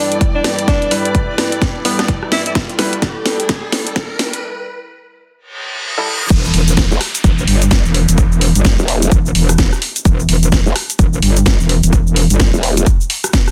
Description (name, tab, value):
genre	bass house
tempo	128 BPM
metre	4/4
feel	swing 60% on 16ths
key	E minor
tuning	A4 = 440 Hz
part	breathy alto saxophone	melody	0.0-2.5 s	B3 to E4	-23 LUFS	equal	tape echo
part	dark analog pad	sustained chords	0.0-4.4 s	G3 to B4	-28 LUFS	equal	chorus, phaser, sidechain pumping
part	riser, reverse cymbal and downlifter	sound effects	1.3-10.1 s	none	-28 LUFS	equal	none
part	dark chamber string section	texture	0.0-4.4 s	E4 to G5	-28 LUFS	equal	sidechain pumping
part	house drum kit	drums	0.1-13.5 s	cabasa, crash cymbal, hi-hat, rim click, snare drum	-20 LUFS	equal	none
part	electronic kick drum	drums	0.2-13.4 s	none	-16 LUFS	equal	none
part	warm concert grand piano	stabs	0.9-2.9, 6.0-6.1 s	G3 to B4	-25 LUFS	equal	sidechain pumping, low-pass filter, tape echo
part	metallic wobble bass	bass	6.3-12.5 s	E1 to G1	-15 LUFS	equal	chorus, sidechain pumping
part	growl bass	bass	6.9-12.9 s	E1 to F#1	-16 LUFS	equal	chorus, tube saturation, sidechain pumping
room	little or no reverb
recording	dense, heavily limited modern master, high-pass filter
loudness	-14 LUFS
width	mono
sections	0.0-6.3 A section; 6.3-13.5 B section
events	build-up 0.0-6.3; drum fill 0.0-4.4; filter sweep 0.0-6.3; riser 1.3-4.4; break 4.4-6.3; reverse cymbal 5.5-6.3; drop 6.3-13.5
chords	0.0 Em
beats	0.21 | 0.68 1.15 1.62 2.08 | 2.55 3.02 3.49 3.96 | 4.43 4.90 5.37 5.83 | 6.30 6.77 7.24 7.71 | 8.18 8.65 9.12 9.59 | 10.05 10.52 10.99 11.46 | 11.93 12.40 12.87 13.34